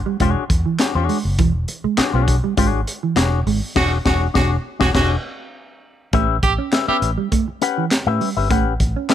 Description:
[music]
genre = funk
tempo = 101 BPM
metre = 4/4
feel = straight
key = E mixolydian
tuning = A4 = 441 Hz
[part]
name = mellow electric guitar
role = riff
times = 0.1-9.1 s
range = E3 to C#4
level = -23 LUFS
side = right 8 dB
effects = none
[part]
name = electric guitar with an envelope filter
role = accompaniment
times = 0.2-9.1 s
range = C#4 to F#5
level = -22 LUFS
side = left 10 dB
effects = none
[part]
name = vintage muted fingered electric bass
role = bass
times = 0.2-8.9 s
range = E1 to A2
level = -21 LUFS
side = equal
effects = none
[part]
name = crunchy breakbeat drum kit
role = drums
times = 0.2-9.1 s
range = crash cymbal, handclaps, hi-hat, kick drum, snare drum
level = -20 LUFS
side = equal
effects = none
[part]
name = breathy tenor saxophone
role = second line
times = 3.8-7.0 s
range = F#4 to G4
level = -23 LUFS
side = right 5 dB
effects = none
[sound]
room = little or no reverb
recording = none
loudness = -16 LUFS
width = side -10 dB against mid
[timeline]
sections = 0.0-6.1 A section; 6.1-9.1 B section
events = band accent 3.8-6.1; break 5.5-6.1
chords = 0.0 E13; 6.1 A9

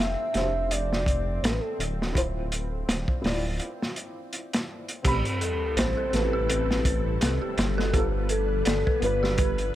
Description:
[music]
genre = trip hop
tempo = 83 BPM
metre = 4/4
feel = swing 56% on 16ths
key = A minor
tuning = A4 = 440 Hz
[part]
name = pure breathy sine lead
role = melody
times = 0.0-9.8 s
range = A4 to E5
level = -31 LUFS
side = equal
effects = chorus, dub echo
[part]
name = felt-muted upright piano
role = accompaniment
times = 0.0-9.8 s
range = B3 to B5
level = -34 LUFS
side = left 1 dB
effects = tremolo, tape echo
[part]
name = dark detuned saw bass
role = bass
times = 0.0-9.7 s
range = D1 to C2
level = -28 LUFS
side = equal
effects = none
[part]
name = crunchy breakbeat drum kit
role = drums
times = 0.0-9.7 s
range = crash cymbal, hi-hat, kick drum, snare drum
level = -28 LUFS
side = equal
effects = vintage 12-bit sampler grit
[part]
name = bowed-like drone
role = texture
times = 0.0-5.1 s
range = C4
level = -44 LUFS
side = right 1 dB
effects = built-in reverb
[part]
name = string machine, cellos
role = sustained chords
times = 5.0-9.8 s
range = F3 to B4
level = -34 LUFS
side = equal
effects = ensemble chorus
[part]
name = dark detuned synth bell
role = arpeggios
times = 5.0-9.8 s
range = G4 to D5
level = -34 LUFS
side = right 3 dB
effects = chorus, ping-pong delay
[part]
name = sub drop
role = sound effects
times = 5.0-7.9 s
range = none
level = -35 LUFS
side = equal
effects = none
[sound]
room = light reverb, studio ambience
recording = none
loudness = -24 LUFS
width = side -13 dB against mid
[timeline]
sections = 0.0-5.0 A section; 5.0-9.8 B section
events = break 3.6-5.0; impact 5.0-7.9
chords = 0.0 F6; 2.2 Dm7; 5.0 Am7; 7.9 G7

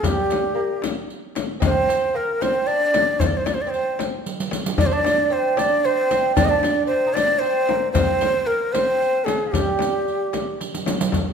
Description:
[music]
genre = Persian modal ensemble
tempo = 76 BPM (dotted quarters)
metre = 6/8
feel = straight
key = unclear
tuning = A4 = 440 Hz
[part]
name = breathy bright ney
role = melody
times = 0.0-10.6 s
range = G4 to Eb5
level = -21 LUFS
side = equal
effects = none
[part]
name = lute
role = second line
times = 0.0-10.6 s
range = F3 to Eb4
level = -25 LUFS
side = right 6 dB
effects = none
[part]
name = frame drum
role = percussion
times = 0.0-11.2 s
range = none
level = -26 LUFS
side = left 7 dB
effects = none
[part]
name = riq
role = percussion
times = 0.0-11.3 s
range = none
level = -30 LUFS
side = right 5 dB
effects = none
[part]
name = tombak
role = percussion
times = 0.0-11.3 s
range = none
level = -26 LUFS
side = left 2 dB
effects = none
[sound]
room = moderate scoring stage reverb, RT60 1.6 s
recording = minimal, uncompressed stereo recording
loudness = -18 LUFS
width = side -6 dB against mid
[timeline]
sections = 0.0-11.1 A section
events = drum fill 4.3-4.8, 10.6-11.1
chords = none

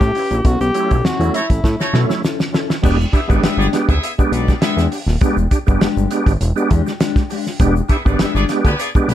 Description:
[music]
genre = funk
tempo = 101 BPM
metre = 4/4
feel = straight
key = E mixolydian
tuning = A4 = 439 Hz
[part]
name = breathy tenor saxophone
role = melody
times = 0.0-1.9 s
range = E4 to G4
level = -20 LUFS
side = left 1 dB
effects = plate reverb
[part]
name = mellow electric guitar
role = accompaniment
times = 0.0-9.1 s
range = G#3 to B4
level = -24 LUFS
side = left 7 dB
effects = spring reverb
[part]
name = fat analog bass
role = bass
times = 0.0-9.1 s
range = D#1 to B2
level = -18 LUFS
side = equal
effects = none
[part]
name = warm soul drum kit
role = drums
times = 0.0-9.1 s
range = crash cymbal, hi-hat, kick drum, snare drum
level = -17 LUFS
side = equal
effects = none
[part]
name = egg shaker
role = percussion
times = 0.0-9.1 s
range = none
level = -40 LUFS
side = left 7 dB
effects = none
[part]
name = bright tonewheel organ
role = stabs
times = 0.2-9.1 s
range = F#3 to G4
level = -20 LUFS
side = right 4 dB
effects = chorus vibrato, fast rotary speaker
[part]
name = clear horn section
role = second line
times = 1.3-9.1 s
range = G#3 to E5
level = -23 LUFS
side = left 1 dB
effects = none
[sound]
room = light reverb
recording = dark, warm production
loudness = -14 LUFS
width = side -11 dB against mid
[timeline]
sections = 0.0-2.8 A section; 2.8-9.1 B section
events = band accent 0.5-2.8; drum fill 1.6-2.8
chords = 0.5 B9sus4; 2.8 E7#9

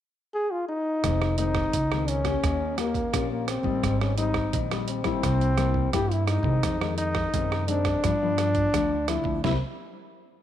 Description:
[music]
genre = samba and choro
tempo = 86 BPM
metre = 4/4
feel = straight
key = F minor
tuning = A4 = 440 Hz
[part]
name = mellow trombone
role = melody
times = 0.3-9.5 s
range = Bb3 to Ab4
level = -27 LUFS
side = left 1 dB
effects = none
[part]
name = nylon-string guitar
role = accompaniment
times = 1.0-9.6 s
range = F2 to G4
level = -31 LUFS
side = left 10 dB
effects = none
[part]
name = upright bass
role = bass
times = 1.0-9.6 s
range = F1 to C3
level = -28 LUFS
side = right 1 dB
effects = none
[part]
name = boom bap sampler-style drum kit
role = drums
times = 1.0-9.6 s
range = hi-hat, kick drum, rim click, snare drum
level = -31 LUFS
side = right 5 dB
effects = overdrive
[sound]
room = light reverb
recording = 1960s-style stereo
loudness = -23 LUFS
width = side -11 dB against mid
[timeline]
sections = 0.0-1.0 A section; 1.0-10.4 B section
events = band accent 9.4-10.4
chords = 0.0 N.C.; 1.0 Fm7; 2.4 Eb7; 3.8 Abmaj7; 5.2 C7; 6.6 Fm7; 8.0 G7; 9.4 C7(no3)

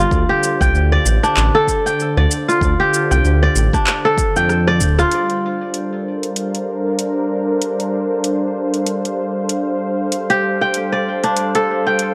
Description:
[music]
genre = organic downtempo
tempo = 96 BPM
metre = 4/4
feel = swing 58% on 16ths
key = G minor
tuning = A4 = 440 Hz
[part]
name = warm analog pad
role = sustained chords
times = 0.0-12.1 s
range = D3 to F5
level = -23 LUFS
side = equal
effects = chorus, sidechain pumping
[part]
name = kora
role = arpeggios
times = 0.0-6.5, 10.3-12.1 s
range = D4 to G5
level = -19 LUFS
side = equal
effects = vintage 12-bit sampler grit, tape echo
[part]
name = smooth synth bass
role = bass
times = 0.0-5.0 s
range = D1 to F2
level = -18 LUFS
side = equal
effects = sidechain pumping
[part]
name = deep house drum kit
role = drums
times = 0.1-12.1 s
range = handclaps, hi-hat, rim click, shaker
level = -24 LUFS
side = equal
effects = overdrive
[part]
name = electronic kick drum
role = drums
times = 0.1-4.3 s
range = none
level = -22 LUFS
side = equal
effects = overdrive
[sound]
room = light reverb, digital ambience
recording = dry, gritty hardware recording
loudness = -17 LUFS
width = mono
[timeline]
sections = 0.0-5.1 A section; 5.1-12.1 B section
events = drum fill 4.5-5.1; band accent 5.0-5.3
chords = 0.1 Dm7; 5.1 Gm11; 10.1 Dm7/G

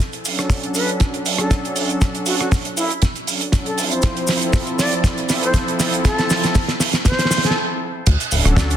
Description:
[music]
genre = nu-disco, nu disco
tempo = 119 BPM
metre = 4/4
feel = swing 54% on 16ths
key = unclear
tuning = A4 = 438 Hz
[part]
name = damped 70s drum kit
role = drums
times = 0.0-8.8 s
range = cabasa, crash cymbal, hi-hat, rim click, snare drum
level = -21 LUFS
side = right 2 dB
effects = small room ambience
[part]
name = maracas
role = percussion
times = 0.0-7.5 s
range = none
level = -29 LUFS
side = left 1 dB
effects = none
[part]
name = warm analog pad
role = accompaniment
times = 0.2-8.8 s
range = F3 to D5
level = -23 LUFS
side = equal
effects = chorus, ping-pong delay
[part]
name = kick drum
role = drums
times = 0.5-8.7 s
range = none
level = -16 LUFS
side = equal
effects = small room ambience
[part]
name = breathy concert flute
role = melody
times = 0.8-7.6 s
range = E4 to D5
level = -25 LUFS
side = left 1 dB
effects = vintage 12-bit sampler grit, low-pass filter, digital delay
[part]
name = chorused synth bass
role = bass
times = 8.1-8.8 s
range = D1 to D2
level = -17 LUFS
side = equal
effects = none
[sound]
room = moderate digital room reverb, RT60 1.1 s, studio ambience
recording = dense, heavily limited modern master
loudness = -16 LUFS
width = side -10 dB against mid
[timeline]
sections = 0.0-8.1 A section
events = build-up 0.0-8.1; drum fill 0.0-7.6; filter sweep on flute 0.0-8.1; stop 7.6-8.1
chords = 0.0 Dmaj7; 3.8 Fmaj7; 8.1 Dmaj7

